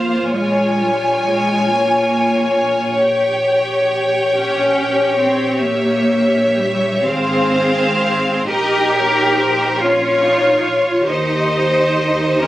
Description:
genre	classical, slow romantic movement for string orchestra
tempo	40-48 BPM (dotted quarters)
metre	6/8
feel	rubato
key	unclear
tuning	A4 = 440 Hz
part	clear studio violin section	melody	0.0-12.5 s	C5 to Ab5	-22 LUFS	equal	none
part	clear studio violin section	second line	0.0-12.5 s	Bb4 to Db5	-17 LUFS	left 1 dB	none
part	rich studio viola section	accompaniment	0.0-12.5 s	Db4 to Ab4	-24 LUFS	equal	none
part	rich studio cello section	bass	0.0-12.5 s	G3 to G4	-19 LUFS	equal	none
part	rich studio double bass section	bass	0.0-12.5 s	Ab1 to F2	-27 LUFS	equal	none
room	light reverb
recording	recorded on a phone in the room, club reverb, compression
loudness	-14 LUFS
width	side -15 dB against mid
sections	0.0-12.5 A section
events	none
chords	0.3 Bbm7; 3.0 Gdim/Bb; 5.6 Bbdim7; 7.0 Fm/Ab; 8.5 Bbm; 11.1 Eb

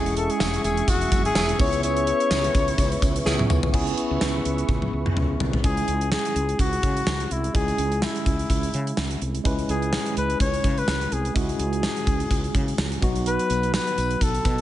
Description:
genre	1980s-style pop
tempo	126 BPM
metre	4/4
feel	swing 55% on 16ths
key	C# minor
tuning	A4 = 440 Hz
part	warm flugelhorn	melody	0.0-14.6 s	E4 to C#5	-26 LUFS	left 3 dB	none
part	tine electric piano	accompaniment	0.0-14.6 s	F#3 to B4	-28 LUFS	right 1 dB	slow stereo tremolo
part	sweeping resonant pad	sustained chords	0.0-5.6 s	G#4 to C#6	-32 LUFS	equal	chorus
part	woody fretless electric bass	bass	0.0-14.6 s	E1 to C#3	-27 LUFS	equal	none
part	gated 80s drum kit	drums	0.1-14.6 s	crash cymbal, hi-hat, kick drum, snare drum, tambourine, toms	-25 LUFS	equal	none
part	clear horn section	stabs	0.4-3.4 s	C#4 to G#4	-34 LUFS	right 4 dB	none
part	tambourine	percussion	0.4-3.6, 13.5-14.6 s	none	-41 LUFS	left 5 dB	none
room	light reverb, small room ambience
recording	nothing above 10.4 kHz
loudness	-21 LUFS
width	side -13 dB against mid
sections	0.0-3.7 A section; 3.7-5.6 B section; 5.6-14.6 C section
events	drum fill 3.3-3.7, 4.7-5.6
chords	0.0 C#m/E; 1.6 C#m7; 5.6 C#m; 13.0 B

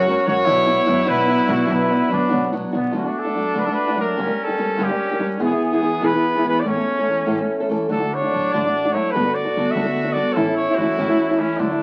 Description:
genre	mexican folk, mariachi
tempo	98 BPM (dotted quarters)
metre	6/8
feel	rubato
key	D major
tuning	A4 = 439 Hz
part	clear trumpet	melody	0.0-11.8 s	D4 to E5	-24 LUFS	equal	none
part	clear trumpet	second line	0.0-11.8 s	A3 to F#4	-28 LUFS	equal	none
part	nylon-string guitar	accompaniment	0.0-11.8 s	E2 to A4	-23 LUFS	equal	none
part	muted chamber violin section	sustained chords	0.0-2.9 s	A#4 to C#6	-35 LUFS	equal	none
part	upright bass	bass	0.0-2.9, 7.9-11.8 s	G1 to F#2	-32 LUFS	equal	none
room	wet studio reverb, RT60 0.7 s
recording	very old 78 rpm record, vinyl crackle, nothing above 10.5 kHz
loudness	-20 LUFS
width	mono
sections	0.0-3.0 A section; 3.0-11.8 B section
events	none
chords	0.5 Bm; 3.0 D; 4.2 Gm; 5.4 E; 6.7 A; 7.9 D; 9.2 Gadd9; 10.4 A

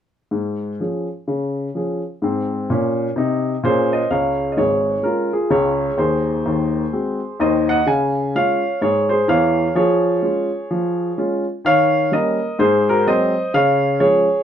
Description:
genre	jazz, stride piano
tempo	127 BPM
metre	4/4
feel	swing 60% on 8ths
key	Db major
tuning	A4 = 440 Hz
part	warm upright piano	solo	0.3-14.4 s	Ab1 to Ab5	-16 LUFS	equal	none
room	moderate studio reverb, RT60 0.6 s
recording	none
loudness	-16 LUFS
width	side -9 dB against mid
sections	0.3-4.1 A section; 4.1-14.4 B section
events	none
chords	0.3 Db/Ab; 2.2 Ab; 4.1 Db; 6.0 Ab7/Eb; 7.9 Db; 9.8 Db/F; 11.6 Eb7; 12.6 Ab7; 13.5 Db

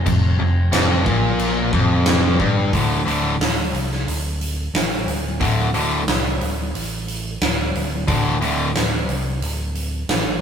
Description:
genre	hard rock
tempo	90 BPM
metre	4/4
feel	straight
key	D minor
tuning	A4 = 441 Hz
part	overdriven picked electric bass	bass	0.0-10.4 s	D1 to C2	-23 LUFS	right 1 dB	none
part	cranked stack guitar	riff	0.1-8.7 s	D2 to D3	-24 LUFS	right 5 dB	overdrive
part	tight distorted guitar	riff	0.1-8.7 s	D2 to D3	-21 LUFS	left 4 dB	distortion
part	huge arena drum kit	drums	0.1-10.2 s	crash cymbal, hi-hat, kick drum, snare drum	-21 LUFS	equal	none
room	moderate stone room reverb, RT60 1.4 s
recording	rough rehearsal-room recording, tube saturation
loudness	-17 LUFS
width	side -8 dB against mid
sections	0.0-2.7 A section; 2.7-10.4 B section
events	none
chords	0.0 Bb5/F; 2.7 D5

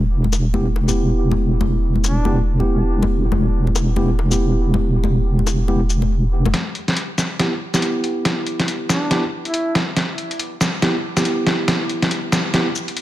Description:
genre	deep dubstep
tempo	140 BPM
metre	4/4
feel	swing 60% on 16ths, half-time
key	E minor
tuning	A4 = 440 Hz
part	deep soft wobble bass	bass	0.0-6.5 s	E1	-17 LUFS	equal	chorus
part	congas and bongos	percussion	0.2-6.5 s	none	-25 LUFS	left 5 dB	none
part	trip hop sampler-style drum kit	drums	0.3-13.0 s	hi-hat, shaker, snare drum	-20 LUFS	equal	none
part	mellow tine electric piano	stabs	0.5-12.7 s	B3 to G4	-24 LUFS	right 1 dB	dub echo
part	warm duduk	melody	2.0-2.4, 8.9-9.8 s	D4 to E4	-28 LUFS	equal	low-pass filter, dub echo
room	light reverb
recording	none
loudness	-16 LUFS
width	side -14 dB against mid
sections	0.0-6.5 A section; 6.5-13.0 B section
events	build-up 6.5-13.0; drum fill 6.5-13.0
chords	0.0 Em

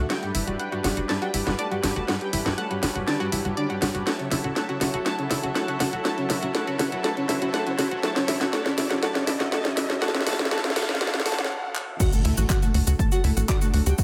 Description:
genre	melodic techno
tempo	121 BPM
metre	4/4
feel	straight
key	F# phrygian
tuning	A4 = 440 Hz
part	soft octave-layered synth lead	melody	0.0-14.0 s	G3 to A4	-33 LUFS	equal	chorus, tremolo, cassette tape, sidechain pumping, analog delay
part	dark symphonic violin section	second line	0.0-14.0 s	G4 to A5	-39 LUFS	equal	sidechain pumping, low-pass filter, analog delay
part	lush unison pad	sustained chords	0.0-12.0 s	F#3 to B4	-36 LUFS	equal	chorus, sidechain pumping
part	tight sequencer bass	bass	0.0-13.9 s	D1 to D2	-29 LUFS	equal	sidechain pumping
part	riser, noise sweep and impact	sound effects	1.7-14.0 s	none	-37 LUFS	equal	none
part	warbly tape-like pad	texture	0.0-14.0 s	D4 to D6	-39 LUFS	equal	none
part	analog pluck	arpeggios	0.1-14.0 s	E4 to A5	-34 LUFS	equal	chorus, sidechain pumping, analog delay
part	house drum kit	drums	0.1-14.0 s	crash cymbal, handclaps, hi-hat, snare drum	-30 LUFS	equal	sidechain pumping on hats, sidechain pumping on cymbals
part	electronic kick drum	drums	12.0-14.0 s	none	-25 LUFS	equal	none
part	cabasa	percussion	12.0-14.0 s	none	-35 LUFS	equal	none
room	moderate plate reverb, RT60 1.9 s, digital ambience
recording	dreamy mix soaked in reverb, high-pass filter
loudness	-25 LUFS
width	mono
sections	0.0-12.0 A section; 12.0-14.0 B section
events	build-up 0.0-12.0; drum fill 0.0-11.5, 11.8; filter sweep on soft synth lead 0.0-12.0; noise sweep 10.0-12.0; break 11.5-12.0; drop 12.0-14.0; impact 12.0-14.0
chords	0.1 G; 4.1 F#m7; 12.0 D

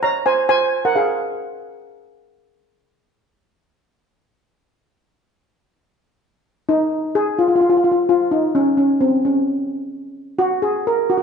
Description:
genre	calypso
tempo	130 BPM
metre	4/4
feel	swing 54% on 16ths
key	unclear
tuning	A4 = 440 Hz
part	steel pan	solo	0.0-2.5, 6.7-11.2 s	C4 to Bb5	-16 LUFS	equal	none
room	moderate recital hall reverb, RT60 1.4 s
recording	dark, warm production, nothing above 10.7 kHz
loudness	-16 LUFS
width	side -6 dB against mid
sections	0.0-3.0 A section; 3.0-6.7 B section; 6.7-11.2 C section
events	none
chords	0.0 Ab; 1.2 N.C.

